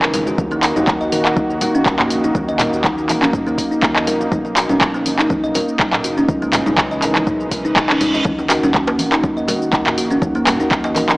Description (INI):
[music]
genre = afro house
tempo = 122 BPM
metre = 4/4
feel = swing 54% on 16ths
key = Eb phrygian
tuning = A4 = 443 Hz
[part]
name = warm analog pad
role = sustained chords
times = 0.0-11.2 s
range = Db3 to Gb4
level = -22 LUFS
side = equal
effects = wide subtle chorus, sidechain pumping
[part]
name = kalimba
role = arpeggios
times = 0.0-11.1 s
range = Bb3 to Eb5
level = -19 LUFS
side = equal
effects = sidechain pumping, dub echo
[part]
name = round analog bass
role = bass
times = 0.0-11.2 s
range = Eb1 to Eb2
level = -30 LUFS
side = equal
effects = sidechain pumping
[part]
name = afro-pop drum kit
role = drums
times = 0.0-11.2 s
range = cabasa, handclaps, hi-hat, toms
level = -18 LUFS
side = equal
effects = none
[part]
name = congas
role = percussion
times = 0.1-11.2 s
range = none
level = -27 LUFS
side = left 1 dB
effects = none
[part]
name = electronic kick drum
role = drums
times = 0.4-10.8 s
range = none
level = -22 LUFS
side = equal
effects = overdrive
[part]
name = reverse cymbal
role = sound effects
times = 7.6-8.3 s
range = none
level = -25 LUFS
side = right 2 dB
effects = none
[part]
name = djembe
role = percussion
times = 8.4-10.9 s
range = none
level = -24 LUFS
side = equal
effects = none
[sound]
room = light reverb, digital ambience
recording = small speaker sound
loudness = -14 LUFS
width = side -23 dB against mid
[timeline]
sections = 0.0-11.2 A section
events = reverse cymbal 7.6-8.3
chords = 0.4 Ebm; 4.3 Bmaj7; 6.3 Dbm; 8.3 Ebm